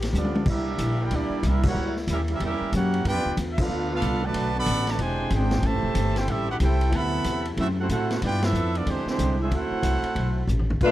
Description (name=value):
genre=jazz, big band swing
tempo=186 BPM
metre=4/4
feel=swing 64% on 8ths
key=unclear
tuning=A4 = 444 Hz
part: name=mellow saxophone section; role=sustained chords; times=0.0-10.8 s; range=C3 to G4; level=-35 LUFS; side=left 4 dB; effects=none
part: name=upright bass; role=bass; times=0.0-10.9 s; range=E1 to A2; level=-25 LUFS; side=equal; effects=none
part: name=vintage drum kit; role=drums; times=0.0-10.9 s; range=crash cymbal, hi-hat, kick drum, ride cymbal, snare drum, toms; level=-31 LUFS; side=equal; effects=none
part: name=clear trumpet section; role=melody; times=0.2-10.5 s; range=G#3 to B5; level=-29 LUFS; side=right 1 dB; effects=slapback echo
part: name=clear trombone section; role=second line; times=0.2-10.5 s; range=C3 to G#4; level=-30 LUFS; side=right 4 dB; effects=none
part: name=warm saxophone section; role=melody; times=10.8-10.9 s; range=A3 to B4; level=-16 LUFS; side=left 3 dB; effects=none
room=little or no reverb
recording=dry, close 1970s-style studio recording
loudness=-22 LUFS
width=side -14 dB against mid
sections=0.0-10.8 A section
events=drum fill 0.1-0.5, 10.5-10.8; band accent 1.6, 3.5, 8.4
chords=0.5 C9; 1.8 C#dim7; 3.0 G13; 4.3 Bm7; 5.0 E7alt; 5.6 Am7; 6.9 D13; 8.2 G13; 8.9 E7alt; 9.5 D13